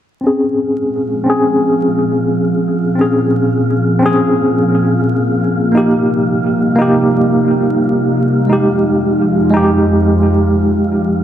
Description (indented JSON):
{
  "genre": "trip hop",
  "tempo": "87 BPM",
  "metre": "4/4",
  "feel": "swing 56% on 16ths",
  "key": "Bb dorian",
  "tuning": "A4 = 440 Hz",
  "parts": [
    { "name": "tine electric piano", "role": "accompaniment", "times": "0.2-11.2 s", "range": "Ab3 to Ab4", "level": "-13 LUFS", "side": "equal", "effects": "tremolo, low-pass filter, tape echo" },
    { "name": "warbly tape-like pad", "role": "sustained chords", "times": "0.9-11.2 s", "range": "F2 to Eb4", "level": "-16 LUFS", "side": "equal", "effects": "chorus, built-in reverb" },
    { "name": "wind-like tuned noise texture", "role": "texture", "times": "0.7-11.2 s", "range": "F3 to F4", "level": "-23 LUFS", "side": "right 1 dB", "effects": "built-in reverb" }
  ],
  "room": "moderate lush hall reverb, RT60 2.4 s",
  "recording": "dark, warm production, vinyl crackle",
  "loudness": "-11 LUFS",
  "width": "side -10 dB against mid",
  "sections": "0.2-11.2 A section",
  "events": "filter sweep on tine electric piano 0.2-11.2",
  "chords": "0.2 Bbm7; 5.7 Cm7; 8.5 Fm7",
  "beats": "| 0.22 0.91 1.60 2.29 | 2.98 3.67 4.36 5.05 | 5.74 6.43 7.12 7.81 | 8.50 9.19 9.88 10.57"
}